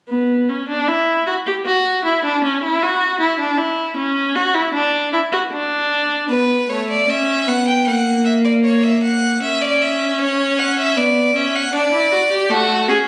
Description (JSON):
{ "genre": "classical, baroque-style fugue for string quartet", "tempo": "77 BPM", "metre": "4/4", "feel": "straight", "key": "B minor", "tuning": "A4 = 439 Hz", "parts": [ { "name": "rich viola", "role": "accompaniment", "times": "0.1-13.1 s", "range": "A3 to G4", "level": "-19 LUFS", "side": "equal", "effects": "none" }, { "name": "clear violin", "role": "second line", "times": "6.3-13.1 s", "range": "F#4 to G5", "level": "-20 LUFS", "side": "equal", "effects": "none" }, { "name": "rich violin", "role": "melody", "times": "12.5-13.0 s", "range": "F#4 to G#4", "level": "-18 LUFS", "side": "equal", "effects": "none" } ], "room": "moderate recital hall reverb, RT60 1.3 s", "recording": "recorded on a phone in the room, studio reverb", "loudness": "-17 LUFS", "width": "mono", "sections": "0.1-6.3 A section; 6.3-13.1 B section", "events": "none", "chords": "0.1 N.C.; 7.9 F#/A#; 9.4 N.C.; 11.0 Bm; 12.5 F#m/A" }